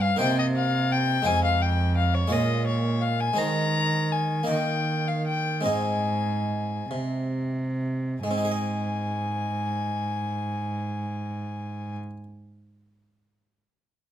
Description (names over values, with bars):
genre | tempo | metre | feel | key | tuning
classical, baroque-style sonata movement with continuo | 44-57 BPM (dotted quarters) | 6/8 | straight | Ab major | A4 = 440 Hz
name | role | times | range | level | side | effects
warm violin | melody | 0.0-12.0 s | Db5 to Bb5 | -28 LUFS | left 5 dB | none
harpsichord | accompaniment | 0.0-12.2 s | F2 to Eb5 | -30 LUFS | right 1 dB | none
rich cello | bass | 0.0-12.0 s | F2 to Eb3 | -27 LUFS | right 2 dB | none
room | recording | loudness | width
light reverb | none | -24 LUFS | side -10 dB against mid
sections
0.0-8.2 A section; 8.2-13.7 B section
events
slowing down 2.3-8.2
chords
0.2 Cm7; 1.3 Fm; 2.3 Bbm7; 3.4 Ab/Eb; 4.5 Eb; 5.7 Ab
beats
0.20 | 1.26 2.32 | 3.38 4.49 | 5.66 6.91 | 8.24 9.60 | 10.96